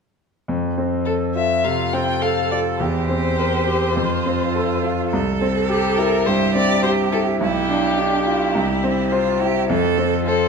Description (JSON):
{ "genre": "quick classical-period movement for piano trio", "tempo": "104 BPM", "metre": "4/4", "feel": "straight", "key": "F major", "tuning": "A4 = 440 Hz", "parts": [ { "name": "bright concert grand piano", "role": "accompaniment", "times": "0.5-10.5 s", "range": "B1 to C5", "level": "-19 LUFS", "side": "equal", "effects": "none" }, { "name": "rich violin", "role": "melody", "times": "1.1-10.5 s", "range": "G4 to G5", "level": "-23 LUFS", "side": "left 5 dB", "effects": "none" }, { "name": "rich cello", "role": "second line", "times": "1.6-10.5 s", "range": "D4 to A4", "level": "-24 LUFS", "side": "right 8 dB", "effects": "none" } ], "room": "moderate recital hall reverb, RT60 1.4 s", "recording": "none", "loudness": "-17 LUFS", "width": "side -5 dB against mid", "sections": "0.5-10.5 A section", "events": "none", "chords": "0.5 F; 2.8 C7/E; 4.0 F; 5.1 C; 7.4 G7/B; 8.5 C; 9.7 F" }